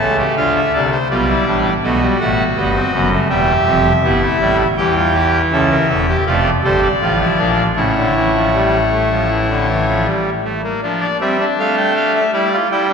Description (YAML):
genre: classical, baroque-style 4-part fugue for pipe organ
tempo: 80 BPM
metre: 4/4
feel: straight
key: D minor from 4.8 s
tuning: A4 = 436 Hz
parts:
  - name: pipe organ, trumpet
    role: solo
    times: 0.0-12.9 s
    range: E1 to A5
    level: -13 LUFS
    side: equal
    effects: none
room: wet church reverb, RT60 2.8 s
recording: heard from further back in the room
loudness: -13 LUFS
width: side -6 dB against mid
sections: 0.0-10.8 A section; 10.8-12.9 B section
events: none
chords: 0.4 Dm; 1.8 B7; 3.3 Em; 4.8 A7/E; 6.3 Dm/F; 7.8 A; 10.8 Dm/F; 12.3 Em7/G